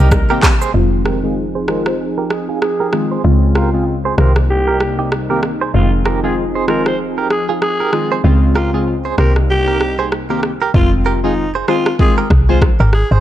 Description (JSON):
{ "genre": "afrobeats", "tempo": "96 BPM", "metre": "4/4", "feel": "swing 58% on 16ths", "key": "F minor", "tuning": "A4 = 440 Hz", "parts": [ { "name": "warm analog pad", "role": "sustained chords", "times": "0.0-10.7 s", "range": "C3 to Ab4", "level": "-22 LUFS", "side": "equal", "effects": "lush chorus, low-pass filter" }, { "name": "direct-recorded clean electric guitar", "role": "riff", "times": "0.0-13.2 s", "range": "Eb4 to C5", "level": "-22 LUFS", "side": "right 7 dB", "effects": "tremolo, low-pass filter" }, { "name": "woody log drum bass", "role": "bass", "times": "0.0-13.2 s", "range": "F1 to Db2", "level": "-15 LUFS", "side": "equal", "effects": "none" }, { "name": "afro-pop drum kit", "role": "drums", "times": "0.1-13.1 s", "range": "handclaps, hi-hat, kick drum, rim click, shaker", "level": "-16 LUFS", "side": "equal", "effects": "none" }, { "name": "warm analog keys", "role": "accompaniment", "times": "0.3-12.7 s", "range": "Db3 to G4", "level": "-19 LUFS", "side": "left 3 dB", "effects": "chorus, low-pass filter" }, { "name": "growling alto saxophone", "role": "melody", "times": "0.8-13.1 s", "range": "Eb4 to C5", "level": "-21 LUFS", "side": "equal", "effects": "low-pass filter" } ], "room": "light reverb, digital ambience", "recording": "dark, warm production", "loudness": "-12 LUFS", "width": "side -12 dB against mid", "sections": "0.7-10.7 A section; 10.7-13.2 B section", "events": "filter sweep 0.7-10.7; kick muted 8.2-10.7; hi-hats muted 10.7-13.2", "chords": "0.0 Cm7; 0.7 Fm7; 3.2 Dbmaj7; 4.2 Cm7; 5.7 Fm7; 8.2 Dbmaj7; 9.2 Cm7; 10.7 Fm7" }